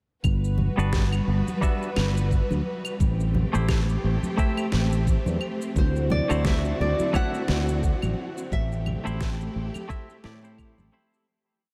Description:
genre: sunset chillout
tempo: 87 BPM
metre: 4/4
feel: swing 57% on 16ths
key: A dorian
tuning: A4 = 440 Hz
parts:
  - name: warm symphonic string section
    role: sustained chords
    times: 0.2-11.2 s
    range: D3 to B4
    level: -34 LUFS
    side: equal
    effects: none
  - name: sustaining fretless electric bass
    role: bass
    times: 0.2-10.9 s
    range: G1 to A2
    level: -27 LUFS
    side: equal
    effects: ensemble chorus
  - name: electronic claves, shaker and snare drum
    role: drums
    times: 0.2-11.3 s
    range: none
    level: -37 LUFS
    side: equal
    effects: studio reverb
  - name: electronic kick drum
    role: drums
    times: 0.2-10.7 s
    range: none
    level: -27 LUFS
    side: equal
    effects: studio reverb
  - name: congas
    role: percussion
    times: 0.6-10.9 s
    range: none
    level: -36 LUFS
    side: equal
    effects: none
  - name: semi-hollow electric guitar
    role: accompaniment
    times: 0.8-11.3 s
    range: G3 to E5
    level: -36 LUFS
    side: equal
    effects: low-pass filter, analog delay
  - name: nylon-string guitar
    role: melody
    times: 5.8-10.9 s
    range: C5 to F#5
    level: -33 LUFS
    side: equal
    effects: lush chorus, analog delay
room: moderate huge ambient reverb, RT60 8.1 s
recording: dreamy mix soaked in reverb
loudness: -25 LUFS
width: mono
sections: 0.2-11.3 groove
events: fade-out 7.6-11.3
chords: 0.2 Gmaj7; 3.0 Am7; 5.8 D9; 8.5 Am7

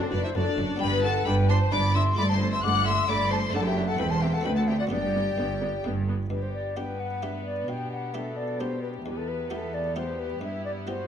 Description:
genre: classical, baroque-style concerto movement with solo episodes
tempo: 131 BPM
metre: 3/4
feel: straight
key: G major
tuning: A4 = 438 Hz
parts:
  - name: mellow silver concert flute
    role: melody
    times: 0.0-11.1 s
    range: G4 to D6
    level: -30 LUFS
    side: left 2 dB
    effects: none
  - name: rich chamber violin section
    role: melody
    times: 0.0-11.1 s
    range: D4 to F#6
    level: -35 LUFS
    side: left 5 dB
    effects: none
  - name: rich studio violin section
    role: second line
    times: 0.0-11.1 s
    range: C4 to F#5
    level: -33 LUFS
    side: left 3 dB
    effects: none
  - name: buff-stop harpsichord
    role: accompaniment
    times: 0.0-11.1 s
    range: D2 to A4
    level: -37 LUFS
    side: left 1 dB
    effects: none
  - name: rich chamber viola section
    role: accompaniment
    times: 0.0-11.1 s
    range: A3 to F#4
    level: -36 LUFS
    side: equal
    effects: none
  - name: rich chamber cello section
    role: bass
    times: 0.1-11.1 s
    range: D2 to B2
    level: -30 LUFS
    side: right 2 dB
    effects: none
  - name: rich studio double bass section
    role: bass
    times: 0.1-6.3 s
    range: E1 to D2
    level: -29 LUFS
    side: right 3 dB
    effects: none
room: moderate recital hall reverb, RT60 1.4 s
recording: dark, warm production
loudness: -24 LUFS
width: side -8 dB against mid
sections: 0.0-6.3 A section; 6.3-11.1 B section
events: none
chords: 0.0 D/F#; 0.8 G; 2.2 A5/G; 3.5 D/F#; 4.0 C/E; 4.5 D7; 4.9 G; 7.7 G/B; 9.1 Em; 10.4 Em/G

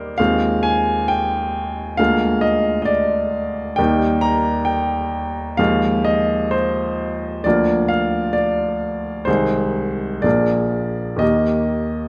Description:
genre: classical, romantic character piece for solo piano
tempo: 65 BPM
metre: 4/4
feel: uneven beats, rubato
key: unclear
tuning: A4 = 440 Hz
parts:
  - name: clear baby grand piano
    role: solo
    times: 0.0-12.1 s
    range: Bb1 to Bb5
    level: -19 LUFS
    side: equal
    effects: none
room: moderate recital hall reverb, RT60 1.7 s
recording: none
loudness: -19 LUFS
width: mono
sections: 0.0-12.1 A section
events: none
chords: 0.2 Fm7/Eb; 2.0 Bb7/D; 3.8 Eb; 5.6 Fm7/Eb; 7.4 Bb/D; 9.3 Ab/C; 10.2 Bb7; 11.2 Eb

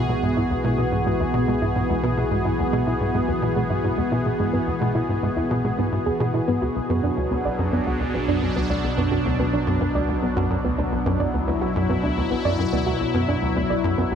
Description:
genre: ambient, sequencer-driven space music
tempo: 108 BPM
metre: 4/4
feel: straight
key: B dorian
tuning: A4 = 440 Hz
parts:
  - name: sweeping resonant pad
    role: sustained chords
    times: 0.0-14.2 s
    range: B2 to G#4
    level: -24 LUFS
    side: left 1 dB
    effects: chorus
  - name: soft round pluck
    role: arpeggios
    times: 0.0-14.2 s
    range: G#3 to D5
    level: -28 LUFS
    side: right 2 dB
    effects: chorus, auto-pan, analog delay
  - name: tight sequencer bass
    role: riff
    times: 0.0-14.2 s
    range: B1 to B2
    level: -25 LUFS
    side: equal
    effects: ensemble chorus, analog delay
  - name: analog drone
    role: bass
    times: 0.0-14.2 s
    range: B1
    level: -31 LUFS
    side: equal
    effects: chorus
room: moderate huge ambient reverb, RT60 8.2 s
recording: none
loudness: -20 LUFS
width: side -8 dB against mid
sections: 0.0-14.2 A section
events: none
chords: 0.0 E/B; 6.6 Bm

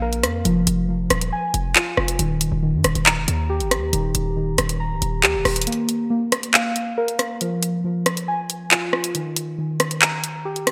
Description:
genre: hip hop, drill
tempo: 138 BPM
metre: 4/4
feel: half-time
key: unclear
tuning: A4 = 440 Hz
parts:
  - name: muted felt-like synth keys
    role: arpeggios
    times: 0.0-10.7 s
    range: Eb3 to Bb5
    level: -26 LUFS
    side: equal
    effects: chorus, low-pass filter, delay
  - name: hard-hitting 808-style bass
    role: bass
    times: 0.0-5.7 s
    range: Db1 to G2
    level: -27 LUFS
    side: equal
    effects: none
  - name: drill drum kit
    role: drums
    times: 0.1-10.7 s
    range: handclaps, hi-hat, rim click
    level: -21 LUFS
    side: equal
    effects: overdrive
room: moderate lush hall reverb, RT60 1.8 s, digital ambience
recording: bright 1980s-style digital production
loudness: -21 LUFS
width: mono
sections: 0.0-5.7 A section; 5.7-10.7 B section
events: kick muted 5.7-10.7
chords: 0.5 Fm7; 2.2 Eb; 5.7 Bb5; 7.4 Fm; 9.1 Eb

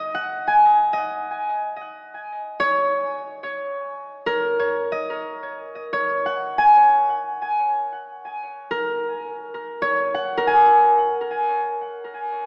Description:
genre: ambient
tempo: 54 BPM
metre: 3/4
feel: straight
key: unclear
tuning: A4 = 444 Hz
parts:
  - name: concert harp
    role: solo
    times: 0.0-12.5 s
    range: A#4 to G#5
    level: -22 LUFS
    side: equal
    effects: tape echo
room: wet plate reverb, RT60 2.6 s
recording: echo-heavy mix, small speaker sound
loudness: -21 LUFS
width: mono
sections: 0.0-12.5 A section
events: none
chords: 0.0 G#9sus4

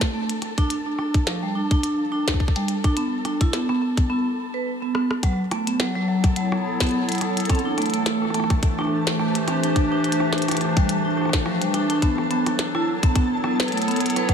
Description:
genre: IDM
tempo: 106 BPM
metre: 4/4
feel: swing 56% on 16ths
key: unclear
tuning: A4 = 445 Hz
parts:
  - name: electronic kick drum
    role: drums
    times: 0.0-14.3 s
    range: none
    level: -20 LUFS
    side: equal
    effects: studio reverb
  - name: glitchy drum kit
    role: drums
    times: 0.0-14.3 s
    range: hi-hat, rim click, snare drum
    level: -29 LUFS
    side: left 1 dB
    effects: studio reverb
  - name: flickering grainy texture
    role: texture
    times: 0.0-14.3 s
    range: A4 to A5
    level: -32 LUFS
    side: left 2 dB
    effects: built-in reverb
  - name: vibraphone with medium mallets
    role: arpeggios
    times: 0.1-14.3 s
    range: F3 to B4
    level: -23 LUFS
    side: right 1 dB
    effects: digital delay
  - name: warbly tape-like pad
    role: sustained chords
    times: 5.7-14.3 s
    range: E3 to C#5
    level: -25 LUFS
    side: left 2 dB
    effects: chorus, built-in reverb
room: light reverb, digital ambience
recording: none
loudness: -20 LUFS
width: side -7 dB against mid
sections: 0.0-5.2 A section; 5.2-14.3 B section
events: break 4.1-5.2; drum fill 4.8-5.2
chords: 0.0 N.C.; 0.7 D5; 3.0 B7(no3); 5.2 F#m7; 7.5 Am7; 9.8 D7(no3); 12.0 Bm7

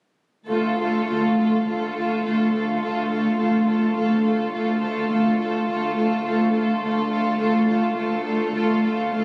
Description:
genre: quick classical-period movement for string orchestra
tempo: 105 BPM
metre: 4/4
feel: rubato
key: D minor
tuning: A4 = 440 Hz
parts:
  - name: muted chamber violin section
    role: melody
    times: 0.5-9.2 s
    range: A4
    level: -32 LUFS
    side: equal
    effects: none
  - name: muted chamber violin section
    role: second line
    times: 0.5-9.2 s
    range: F4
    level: -29 LUFS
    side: equal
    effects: none
  - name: muted chamber viola section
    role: accompaniment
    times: 0.5-9.2 s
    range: A3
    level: -26 LUFS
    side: equal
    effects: none
  - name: muted symphonic cello section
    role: bass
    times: 0.5-9.2 s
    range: D2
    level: -27 LUFS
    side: equal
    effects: none
room: wet scoring stage reverb, RT60 1.7 s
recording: recorded on a phone in the room, studio reverb, compression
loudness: -22 LUFS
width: mono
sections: 0.5-9.2 A section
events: none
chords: 0.5 Dm

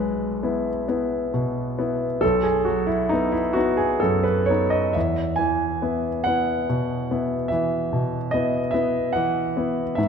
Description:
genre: classical, romantic nocturne for solo piano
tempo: 42-50 BPM (dotted quarters)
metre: 12/8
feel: rubato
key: E major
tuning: A4 = 440 Hz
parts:
  - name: clear grand piano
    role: solo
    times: 0.0-10.1 s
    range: B1 to G#5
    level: -20 LUFS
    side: equal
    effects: none
room: moderate scoring stage reverb, RT60 1.6 s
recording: dark, warm production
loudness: -20 LUFS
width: side -6 dB against mid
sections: 0.0-10.1 A section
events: none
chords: 0.0 E/B; 2.2 B; 5.0 E

